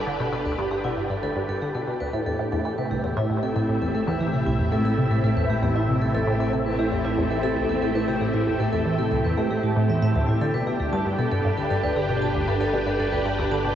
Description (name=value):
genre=ambient, sequencer-driven space music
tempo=116 BPM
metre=4/4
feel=straight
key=A minor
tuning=A4 = 440 Hz
part: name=phased string machine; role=sustained chords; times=0.0-13.8 s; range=A2 to E5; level=-26 LUFS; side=equal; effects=ensemble chorus, phaser, shimmer reverb
part: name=vibraphone with medium hard mallets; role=arpeggios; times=0.0-13.6 s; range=E4 to A5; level=-30 LUFS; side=right 1 dB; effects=auto-pan, analog delay, shimmer reverb
part: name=resonant blip pluck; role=riff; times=0.0-13.8 s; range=C2 to E3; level=-25 LUFS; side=equal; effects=phaser, lush chorus, analog delay, shimmer reverb
part: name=analog drone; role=bass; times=0.0-13.8 s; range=G1 to A1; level=-35 LUFS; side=equal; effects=chorus
part: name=bubbling stepped-filter texture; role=texture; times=0.0-13.8 s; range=G4 to G5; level=-34 LUFS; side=equal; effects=chorus, built-in reverb, shimmer reverb
room=wet huge ambient reverb, RT60 8.3 s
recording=worn, warbling old tape, cassette tape, warbly pitch drift, nothing above 7.8 kHz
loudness=-21 LUFS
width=side -10 dB against mid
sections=0.0-13.8 A section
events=fade-in on synth drone 0.0-13.8; fade-in on synth texture 0.0-13.8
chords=0.0 G; 2.1 Am; 10.4 G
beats=| 0.07 0.58 1.10 1.62 | 2.13 2.65 3.17 3.69 | 4.20 4.72 5.24 5.75 | 6.27 6.79 7.31 7.82 | 8.34 8.86 9.38 9.89 | 10.41 10.93 11.45 11.96 | 12.48 13.00 13.51